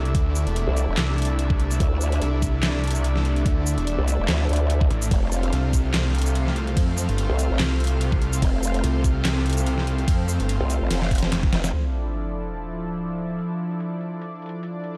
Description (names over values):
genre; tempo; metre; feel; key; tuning
heavy wobble dubstep; 145 BPM; 4/4; swing 55% on 16ths, half-time; D minor; A4 = 440 Hz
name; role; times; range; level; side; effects
lush unison pad; sustained chords; 0.0-15.0 s; F3 to F5; -34 LUFS; equal; chorus, sidechain pumping
snarling distorted saw bass; bass; 0.0-11.5 s; E1 to F2; -25 LUFS; equal; distortion, overdrive
warbly tape-like pad; texture; 0.0-15.0 s; F3 to G5; -34 LUFS; equal; chorus, built-in reverb, sidechain pumping
dubstep drum kit; drums; 0.1-15.0 s; handclaps, hi-hat, ride cymbal, shaker, snare drum; -31 LUFS; equal; overdrive, low-pass filter on hats, low-pass filter on perc, low-pass filter on snare, low-pass filter on cymbals, low-pass filter on room
electronic kick drum; drums; 0.1-11.5 s; none; -24 LUFS; equal; overdrive
growl bass; bass; 0.7-11.7 s; E1 to D2; -25 LUFS; equal; chorus, overdrive
sub drop; sound effects; 11.7-13.4 s; none; -31 LUFS; equal; none
room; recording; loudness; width
light reverb, digital ambience; dark, warm production; -23 LUFS; mono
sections
0.0-11.7 A section; 11.7-15.0 B section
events
drop 0.0-11.7; drum fill 10.9-11.7; band accent 11.6; impact 11.7-13.4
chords
0.0 Dsus2; 5.1 F; 11.7 Dmadd9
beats
| 0.15 0.56 0.97 1.39 | 1.80 2.22 2.63 3.04 | 3.46 3.87 4.29 4.70 | 5.11 5.53 5.94 6.35 | 6.77 7.18 7.59 8.01 | 8.42 8.84 9.25 9.66 | 10.08 10.49 10.90 11.32 | 11.73 12.15 12.56 12.97 | 13.39 13.80 14.22 14.63